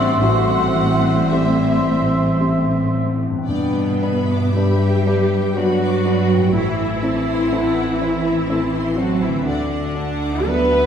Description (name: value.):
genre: cinematic.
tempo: 54-63 BPM.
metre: 3/4.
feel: rubato.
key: G major.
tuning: A4 = 440 Hz.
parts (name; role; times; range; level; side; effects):
rich symphonic violin section; melody; 0.0-10.9 s; C5 to F#5; -32 LUFS; left 3 dB; none.
bright large flute ensemble; second line; 0.0-3.1 s; C6; -25 LUFS; left 1 dB; none.
clear oboe; second line; 0.0-3.1 s; E5; -25 LUFS; right 3 dB; none.
clear symphonic violin section; second line; 0.0-10.9 s; C5 to D6; -34 LUFS; left 3 dB; none.
mellow clarinet; second line; 0.0-2.4 s; E4 to F#4; -28 LUFS; left 2 dB; none.
rich symphonic viola section; accompaniment; 0.0-10.9 s; A3 to B4; -21 LUFS; equal; none.
warm grand piano; accompaniment; 0.0-10.9 s; A1 to E5; -24 LUFS; left 2 dB; none.
mellow French horn section; sustained chords; 0.0-3.1 s; G3 to C4; -27 LUFS; left 1 dB; none.
concert harp; arpeggios; 0.0-10.9 s; G2 to G5; -26 LUFS; left 2 dB; none.
rich symphonic cello section; bass; 0.0-10.9 s; A2 to B3; -24 LUFS; right 3 dB; none.
rich symphonic double bass section; bass; 0.0-10.9 s; A1 to G2; -24 LUFS; equal; none.
room: wet scoring stage reverb, RT60 1.6 s.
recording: heard from further back in the room.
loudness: -16 LUFS.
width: side -8 dB against mid.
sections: 0.0-3.5 A section; 3.5-10.9 B section.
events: none.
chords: 0.0 Am7; 3.5 G; 6.5 Am; 9.4 D.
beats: | 0.20 1.29 2.39 | 3.47 4.55 5.55 | 6.54 7.51 8.48 | 9.45 10.46.